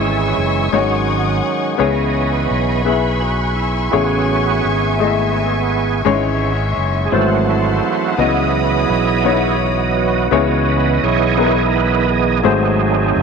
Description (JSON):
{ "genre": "gospel", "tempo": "56 BPM (dotted quarters)", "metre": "6/8", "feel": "straight", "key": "C# minor", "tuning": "A4 = 437 Hz", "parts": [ { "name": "clear upright piano", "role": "accompaniment", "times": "0.0-13.2 s", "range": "G#2 to E5", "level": "-19 LUFS", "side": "left 10 dB", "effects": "none" }, { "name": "overdriven tonewheel organ", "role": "sustained chords", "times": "0.0-13.2 s", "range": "D#3 to D#5", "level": "-18 LUFS", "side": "right 10 dB", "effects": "slow rotary speaker, chorus vibrato" }, { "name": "warm studio string section", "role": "sustained chords", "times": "0.0-10.3 s", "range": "E5 to E6", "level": "-23 LUFS", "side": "left 2 dB", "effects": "none" }, { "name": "fingered electric bass", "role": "bass", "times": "0.0-13.2 s", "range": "F#1 to C#2", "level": "-20 LUFS", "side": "equal", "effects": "none" } ], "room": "moderate plate reverb, RT60 3.1 s", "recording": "1960s-style stereo with parts hard left and right, faint mains hum", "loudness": "-14 LUFS", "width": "side -5 dB against mid", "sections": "0.0-10.3 A section; 10.3-13.2 B section", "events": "tonewheel organ solo 0.0-10.3, 10.3-13.2", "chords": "0.0 C#m/G#; 0.7 G#7sus4; 1.8 C#m7; 3.9 Amaj7; 6.1 C#m/G#; 7.1 G#7b9b13; 8.2 C#m11; 10.3 C#m7; 12.4 G#7b9" }